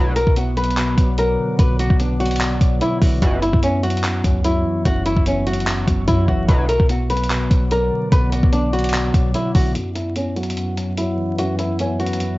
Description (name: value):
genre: hip hop, trap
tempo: 147 BPM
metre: 4/4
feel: half-time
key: B minor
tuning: A4 = 440 Hz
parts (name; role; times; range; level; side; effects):
- flamenco guitar; melody; 0.0-12.4 s; C#4 to B4; -22 LUFS; left 1 dB; low-pass filter, cassette tape
- mellow tine electric piano; accompaniment; 0.0-12.4 s; F#2 to B3; -22 LUFS; equal; medium stereo tremolo, low-pass filter, cassette tape
- deep dark ambient pad; sustained chords; 0.1-12.4 s; B3 to D6; -32 LUFS; right 1 dB; chorus, built-in reverb, low-pass filter, cassette tape
- sync-sweep polysynth; stabs; 0.0-0.1, 3.2-3.4, 6.5-6.7 s; C#2 to F#3; -26 LUFS; right 1 dB; chorus, cassette tape
- clean 808-style bass; bass; 0.0-9.7 s; F#1 to F#2; -21 LUFS; equal; none
- dusty soul sampler-style drum kit; drums; 0.2-12.3 s; handclaps, hi-hat, kick drum; -20 LUFS; equal; cassette tape
room: little or no reverb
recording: home recording on cassette, vinyl crackle, nothing above 7.7 kHz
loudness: -16 LUFS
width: side -20 dB against mid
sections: 0.0-9.8 A section; 9.8-12.4 B section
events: filter sweep 9.8-12.4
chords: 0.0 Bm; 3.2 F#7sus4; 6.5 Bm; 9.8 F#7sus4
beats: 0.36 0.77 1.18 | 1.59 2.00 2.40 2.81 | 3.22 3.63 4.04 4.45 | 4.85 5.26 5.67 6.08 | 6.49 6.89 7.30 7.71 | 8.12 8.53 8.94 9.34 | 9.75 10.16 10.57 10.98 | 11.38 11.79 12.20